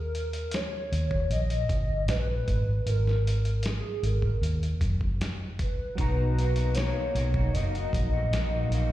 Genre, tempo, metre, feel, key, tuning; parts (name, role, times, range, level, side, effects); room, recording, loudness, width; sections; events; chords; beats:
indie pop, bedroom pop; 77 BPM; 4/4; straight; A4 = 440 Hz
hollow clarinet-like synth lead; melody; 0.0-8.9 s; G#4 to D#5; -33 LUFS; equal; analog chorus, slapback echo
vintage muted fingered electric bass; bass; 0.0-8.9 s; F#1 to F#2; -26 LUFS; equal
dusty soul sampler-style drum kit; drums; 0.1-8.9 s; hi-hat, kick drum, snare drum; -32 LUFS; equal
electric guitar through a small old amp; accompaniment; 6.0-8.9 s; B2 to F#4; -36 LUFS; left 2 dB; analog chorus, vibrato effect, slapback echo
warbly lo-fi synth keys; accompaniment; 6.0-8.9 s; F#3 to A#5; -37 LUFS; right 4 dB; chorus, cassette tape
digital ambience; live gig heard through the venue's PA, recital hall reverb; -25 LUFS; side -14 dB against mid
0.0-8.9 A section
0.0 D#7; 2.5 G#5; 6.0 Bmaj7
0.53 1.31 2.09 | 2.87 3.65 4.43 5.21 | 5.98 6.76 7.54 8.32